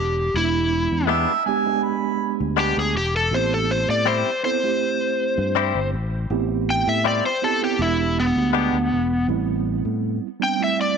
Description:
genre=blues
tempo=81 BPM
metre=4/4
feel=straight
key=A minor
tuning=A4 = 440 Hz
part: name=overdriven slide guitar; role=melody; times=0.0-11.0 s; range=B3 to G5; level=-22 LUFS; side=left 1 dB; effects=none
part: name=fingered electric bass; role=bass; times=0.0-10.2 s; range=E1 to A2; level=-24 LUFS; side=left 2 dB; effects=none
part: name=mellow tine electric piano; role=accompaniment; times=0.3-11.0 s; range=G3 to A4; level=-26 LUFS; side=right 16 dB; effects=medium stereo tremolo
part: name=mellow harmonica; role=second line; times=1.1-2.4 s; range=E5 to B5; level=-24 LUFS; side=right 7 dB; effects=overdrive
part: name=direct-recorded clean electric guitar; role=stabs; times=1.1-8.8 s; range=G3 to G4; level=-26 LUFS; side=left 12 dB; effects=none
room=moderate spring reverb, RT60 2.5 s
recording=1960s-style stereo with parts hard left and right, nothing above 10.4 kHz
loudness=-19 LUFS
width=side -6 dB against mid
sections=0.0-9.3 A section; 9.3-11.0 A section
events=none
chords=0.0 E7#9; 3.3 Am7; 7.8 E7#9; 9.3 Am7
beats=| 0.34 1.09 1.83 2.58 | 3.32 4.07 4.81 5.55 | 6.30 7.04 7.79 8.53 | 9.28 10.02 10.77

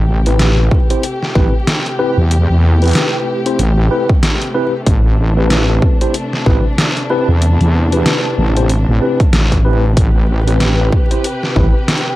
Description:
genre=glitch hop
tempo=94 BPM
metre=4/4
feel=swing 59% on 16ths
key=A minor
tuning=A4 = 440 Hz
part: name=warm studio string section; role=sustained chords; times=0.0-12.2 s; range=C3 to B4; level=-22 LUFS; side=left 1 dB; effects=sidechain pumping
part: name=wobble bass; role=bass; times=0.0-10.9 s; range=A1 to E2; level=-12 LUFS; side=equal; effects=chorus
part: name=mellow tine electric piano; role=stabs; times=0.3-11.7 s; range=C4 to C5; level=-19 LUFS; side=left 1 dB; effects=medium stereo tremolo, sidechain pumping, analog delay
part: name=dubstep drum kit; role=drums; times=0.3-12.1 s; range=hi-hat, snare drum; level=-17 LUFS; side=equal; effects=none
part: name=electronic kick drum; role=drums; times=0.7-11.7 s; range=none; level=-13 LUFS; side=equal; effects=none
part: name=rubbery square bass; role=bass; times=11.6-11.7 s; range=A1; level=-13 LUFS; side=equal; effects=none
room=little or no reverb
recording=dry, gritty hardware recording, vinyl crackle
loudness=-11 LUFS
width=side -16 dB against mid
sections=0.0-12.2 A section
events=none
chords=0.0 Am7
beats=0.40 1.04 1.67 | 2.31 2.95 3.59 4.23 | 4.87 5.50 6.14 6.78 | 7.42 8.06 8.70 9.33 | 9.97 10.61 11.25 11.89

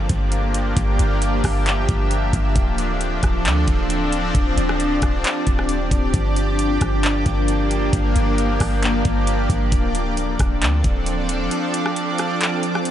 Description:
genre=hip hop, atmospheric cloud-rap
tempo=134 BPM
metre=4/4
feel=half-time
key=D minor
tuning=A4 = 440 Hz
part: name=shimmering ambient pad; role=sustained chords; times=0.0-12.9 s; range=F3 to E5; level=-21 LUFS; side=equal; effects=chorus, built-in reverb, sidechain pumping
part: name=clean 808-style bass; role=bass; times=0.0-11.5 s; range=D1 to D2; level=-21 LUFS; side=equal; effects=none
part: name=trap drum kit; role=drums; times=0.1-12.9 s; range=handclaps, hi-hat, kick drum, rim click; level=-22 LUFS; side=equal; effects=none
room=light reverb, digital ambience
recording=nothing above 11.0 kHz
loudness=-17 LUFS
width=side -11 dB against mid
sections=0.0-12.9 A section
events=kick muted 11.5-12.9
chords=0.0 Gm7; 2.6 Dm7; 6.1 Gm7; 9.7 Dm7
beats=0.32 | 0.77 1.22 1.66 2.11 | 2.56 3.01 3.45 3.90 | 4.35 4.80 5.24 5.69 | 6.14 6.59 7.04 7.48 | 7.93 8.38 8.83 9.27 | 9.72 10.17 10.62 11.06 | 11.51 11.96 12.41 12.86

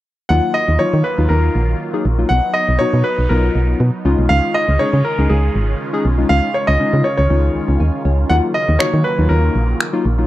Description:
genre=dance-pop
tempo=120 BPM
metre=4/4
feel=straight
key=Eb minor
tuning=A4 = 439 Hz
part: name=clear concert grand piano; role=melody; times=0.3-9.8 s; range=Ab4 to Gb5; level=-18 LUFS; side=equal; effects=none
part: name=warm analog keys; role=accompaniment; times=0.3-10.3 s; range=Gb3 to Ab5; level=-21 LUFS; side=left 4 dB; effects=chorus
part: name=filtered supersaw swell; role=sustained chords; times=0.3-10.3 s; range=Db3 to F4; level=-25 LUFS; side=right 1 dB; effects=phaser
part: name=solid FM bass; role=bass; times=0.3-10.3 s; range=Ab1 to Eb3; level=-15 LUFS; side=equal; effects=none
part: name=electronic finger snaps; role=drums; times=8.8-9.9 s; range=none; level=-19 LUFS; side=equal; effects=none
room=little or no reverb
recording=dry, close 1970s-style studio recording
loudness=-13 LUFS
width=side -15 dB against mid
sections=0.3-10.3 A section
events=synth keys fill 7.6-8.3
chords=0.3 Ebmadd9; 2.3 B; 4.1 Dbadd9; 8.3 Ebmadd9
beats=| 0.30 0.80 1.30 1.80 | 2.30 2.80 3.30 3.80 | 4.30 4.80 5.30 5.80 | 6.30 6.80 7.30 7.80 | 8.30 8.80 9.30 9.80

